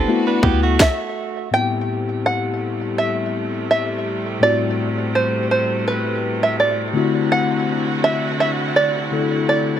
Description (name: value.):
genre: contemporary R&B.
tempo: 83 BPM.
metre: 4/4.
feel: swing 54% on 16ths.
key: A dorian.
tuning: A4 = 436 Hz.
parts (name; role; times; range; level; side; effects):
mellow tine electric piano; accompaniment; 0.0-9.8 s; A2 to A4; -21 LUFS; left 5 dB; phaser.
rich studio string section; sustained chords; 0.0-9.8 s; C3 to B4; -26 LUFS; right 3 dB; none.
direct-recorded clean electric guitar; arpeggios; 0.0-1.5 s; A3 to B4; -24 LUFS; right 8 dB; ping-pong delay.
soft 808-style bass; bass; 0.0-0.8 s; D2; -20 LUFS; right 1 dB; none.
trap drum kit; drums; 0.4-1.0 s; kick drum, snare drum; -16 LUFS; equal; none.
open-back banjo; melody; 0.8-9.8 s; B4 to G5; -20 LUFS; right 2 dB; ping-pong delay.
room: light reverb.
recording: none.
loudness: -17 LUFS.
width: side -10 dB against mid.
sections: 0.0-1.5 A section; 1.5-9.8 B section.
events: stop 0.8-1.5.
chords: 0.1 Gmaj13; 1.5 Am9; 6.9 D9.